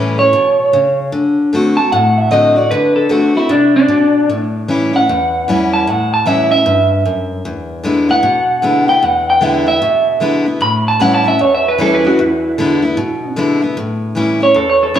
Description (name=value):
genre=rock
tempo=152 BPM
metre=4/4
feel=swing 63% on 8ths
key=A mixolydian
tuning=A4 = 437 Hz
part: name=electric guitar through a small old amp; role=melody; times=0.0-15.0 s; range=D4 to B5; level=-12 LUFS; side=right 1 dB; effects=spring reverb
part: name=picked steel-string acoustic guitar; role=accompaniment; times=0.0-15.0 s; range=E2 to F#4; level=-15 LUFS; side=left 2 dB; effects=none
room=wet large studio reverb, RT60 1.4 s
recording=band playing live in one room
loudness=-11 LUFS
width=side -10 dB against mid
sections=0.0-13.8 A section; 13.8-15.0 B section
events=clean electric guitar solo 0.0-13.8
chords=0.0 A7; 1.1 D7; 4.3 A7; 7.5 E7; 10.6 A7; 12.2 E7; 13.8 A7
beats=0.34 0.73 | 1.13 1.53 1.92 2.32 | 2.71 3.11 3.50 3.90 | 4.29 4.69 5.09 5.48 | 5.88 6.27 6.67 7.06 | 7.46 7.85 8.25 8.64 | 9.04 9.43 9.83 10.22 | 10.62 11.01 11.40 11.80 | 12.19 12.59 12.98 13.38 | 13.77 14.17 14.56 14.96